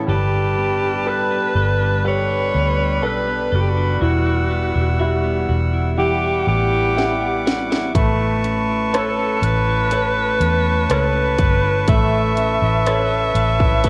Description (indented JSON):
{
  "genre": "pop ballad",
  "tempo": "61 BPM",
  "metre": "4/4",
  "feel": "straight",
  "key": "unclear",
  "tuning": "A4 = 439 Hz",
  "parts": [
    { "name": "bright grand piano", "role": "accompaniment", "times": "0.0-13.9 s", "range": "A2 to A5", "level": "-27 LUFS", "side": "equal", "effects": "cassette tape" },
    { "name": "accordion", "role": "sustained chords", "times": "0.0-13.9 s", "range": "G3 to E6", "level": "-26 LUFS", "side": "equal", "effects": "cassette tape" },
    { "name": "clean electric guitar", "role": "arpeggios", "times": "0.0-13.9 s", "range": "E3 to B4", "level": "-31 LUFS", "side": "equal", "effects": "cassette tape, tape echo" },
    { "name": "bright alto saxophone", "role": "melody", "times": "0.1-13.9 s", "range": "F#4 to E5", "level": "-24 LUFS", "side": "equal", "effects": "cassette tape" },
    { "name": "vintage muted fingered electric bass", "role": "bass", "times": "0.1-13.9 s", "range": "E1 to E2", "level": "-23 LUFS", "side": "equal", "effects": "none" },
    { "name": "house drum kit", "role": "drums", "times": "7.0-13.9 s", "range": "hi-hat, kick drum, rim click, snare drum", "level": "-22 LUFS", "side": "equal", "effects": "overdrive, cassette tape" }
  ],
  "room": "small room ambience",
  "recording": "home recording on cassette",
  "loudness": "-18 LUFS",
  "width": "mono",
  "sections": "0.1-13.9 A section",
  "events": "drum fill 7.0-8.0",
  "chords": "0.1 Gadd9; 4.0 Emadd9; 8.0 Aadd9"
}